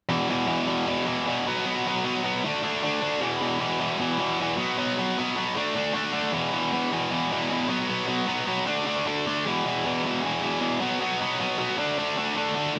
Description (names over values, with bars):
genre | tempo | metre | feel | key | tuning
punk | 154 BPM | 4/4 | straight | unclear | A4 = 442 Hz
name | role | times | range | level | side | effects
tight distorted guitar | solo | 0.1-12.8 s | E2 to D4 | -26 LUFS | equal | distortion
room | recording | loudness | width
moderate studio reverb, RT60 0.8 s | band playing live in one room | -26 LUFS | mono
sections
0.1-12.6 A section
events
none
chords
0.1 E5; 1.5 B5; 2.4 D5; 3.2 E5; 4.6 B5; 5.5 D5; 6.3 E5; 7.7 B5; 8.7 D5; 9.4 E5; 10.8 B5; 11.8 D5